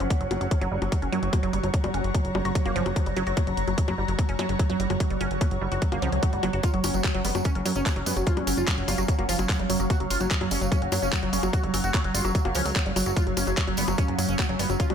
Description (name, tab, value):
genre	psychedelic trance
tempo	147 BPM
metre	4/4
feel	straight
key	F# major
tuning	A4 = 443 Hz
part	overtone-sweeping drone	sustained chords	0.0-14.9 s	F#3 to F#4	-34 LUFS	right 1 dB	chorus, built-in reverb, phaser, sidechain pumping
part	woody wave-folded pluck	riff	0.0-14.9 s	E#3 to F#4	-32 LUFS	right 2 dB	chorus, auto-pan, cassette tape, sidechain pumping, ping-pong delay
part	plucky analog bass	bass	0.0-14.9 s	F#1 to F#2	-29 LUFS	equal	none
part	garage drum kit	drums	0.0-14.9 s	bongos, handclaps, hi-hat	-32 LUFS	left 3 dB	studio reverb
part	ethereal airy pad	texture	0.0-14.9 s	F#3 to A#5	-33 LUFS	right 1 dB	ensemble chorus, built-in reverb, phaser, sidechain pumping
part	electronic kick drum	drums	0.1-14.9 s	none	-25 LUFS	equal	studio reverb
part	swell	sound effects	6.0-6.6 s	none	-36 LUFS	left 1 dB	none
part	overdriven synth lead	melody	6.6-14.9 s	F#3 to F#4	-30 LUFS	equal	phaser, sidechain pumping, ping-pong delay
part	tambourine	percussion	6.6-14.9 s	none	-35 LUFS	right 5 dB	none
room	light reverb, digital ambience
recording	none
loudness	-23 LUFS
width	side -8 dB against mid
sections	0.0-14.9 A section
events	swell 6.0-6.6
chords	0.0 F#5